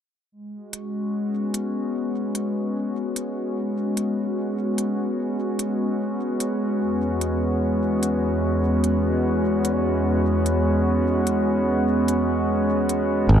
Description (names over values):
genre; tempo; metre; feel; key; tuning
ambient dub; 74 BPM; 4/4; swing 57% on 16ths; G# minor; A4 = 440 Hz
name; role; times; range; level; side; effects
warbly tape-like pad; sustained chords; 0.3-13.4 s; E2 to F#4; -21 LUFS; equal; chorus, built-in reverb
electronic hi-hat; drums; 0.7-13.1 s; none; -29 LUFS; equal; none
modern bright fingered electric bass; bass; 13.3-13.4 s; G#1; -12 LUFS; equal; none
room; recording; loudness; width
moderate spring reverb, RT60 2.4 s; dark, warm production; -21 LUFS; side -9 dB against mid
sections
0.3-13.3 A section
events
none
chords
0.3 G#m; 6.8 E